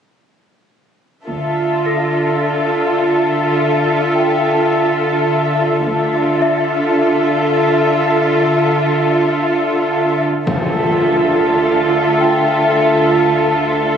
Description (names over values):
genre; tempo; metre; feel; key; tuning
cinematic, suspense film score; 52 BPM; 4/4; straight; D minor; A4 = 440 Hz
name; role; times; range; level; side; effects
muted symphonic violin section; melody; 1.3-14.0 s; E5; -21 LUFS; left 4 dB; none
muted studio violin section; second line; 1.3-14.0 s; A4; -19 LUFS; left 2 dB; none
muted symphonic viola section; accompaniment; 1.3-14.0 s; F4; -17 LUFS; right 3 dB; none
muted symphonic cello section; bass; 1.3-14.0 s; D3; -21 LUFS; right 2 dB; none
muted symphonic double bass section; bass; 1.3-14.0 s; D2; -26 LUFS; right 2 dB; none
worn celesta; texture; 1.9-14.0 s; A4 to Bb6; -23 LUFS; left 5 dB; none
impact; sound effects; 10.5-14.0 s; none; -24 LUFS; equal; none
room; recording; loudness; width
moderate scoring stage reverb, RT60 1.6 s; recorded on a phone in the room, club reverb; -13 LUFS; side -8 dB against mid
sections
1.3-10.5 A section; 10.5-14.0 B section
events
impact 10.5-14.0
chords
1.3 Dmadd9